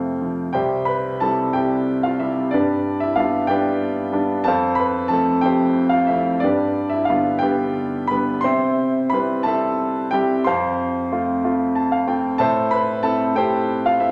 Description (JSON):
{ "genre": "classical, lyrical solo piano", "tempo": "61 BPM (dotted quarters)", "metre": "6/8", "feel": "rubato", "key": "C major", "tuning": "A4 = 440 Hz", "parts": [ { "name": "clear concert grand piano", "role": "solo", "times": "0.0-14.1 s", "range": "C2 to C6", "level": "-20 LUFS", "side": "equal", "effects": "none" } ], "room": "wet recital hall reverb, RT60 1.6 s", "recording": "none", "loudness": "-20 LUFS", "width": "mono", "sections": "0.5-14.1 A section", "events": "grand piano fill 11.4-12.4", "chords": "0.0 F; 0.5 C; 2.5 G; 4.5 F; 6.4 G; 8.4 C; 10.5 F; 12.4 Am", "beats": "| 0.54 1.55 | 2.54 3.50 | 4.47 5.44 | 6.43 7.42 | 8.44 9.47 | 10.47 11.45 | 12.40 13.37" }